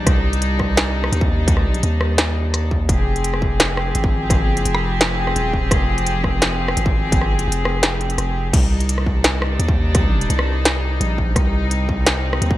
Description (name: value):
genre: half-time drum and bass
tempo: 170 BPM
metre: 4/4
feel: half-time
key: C minor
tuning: A4 = 440 Hz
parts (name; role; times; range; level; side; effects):
- rich chamber string section; sustained chords; 0.0-12.6 s; C3 to Ab4; -23 LUFS; left 1 dB; sidechain pumping
- long sustained 808-style bass; bass; 0.0-12.6 s; Eb1 to Eb2; -20 LUFS; equal; tube saturation
- electronic kick drum; drums; 0.1-12.6 s; none; -19 LUFS; equal; distortion
- industrial drum kit; drums; 0.1-12.5 s; crash cymbal, hi-hat, rim click, snare drum; -21 LUFS; equal; none
room: little or no reverb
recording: bright 1980s-style digital production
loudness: -16 LUFS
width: side -15 dB against mid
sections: 0.0-12.6 A section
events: kick drops out 8.2-8.5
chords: 0.0 Cm; 2.9 Fm; 8.5 Cm